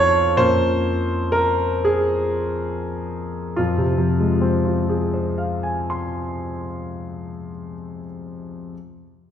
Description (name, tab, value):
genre	classical, romantic character piece for solo piano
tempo	32-44 BPM (dotted quarters)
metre	6/8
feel	rubato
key	F minor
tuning	A4 = 440 Hz
part	warm grand piano	solo	0.0-8.7 s	F2 to C6	-20 LUFS	equal	none
room	wet recital hall reverb, RT60 1.6 s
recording	heard from further back in the room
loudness	-19 LUFS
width	side -9 dB against mid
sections	0.0-3.6 A section; 3.6-6.6 B section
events	slowing down 0.0-3.6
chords	0.4 Bbm/F; 3.6 Fm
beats	| 0.39 1.86 | 3.58 5.11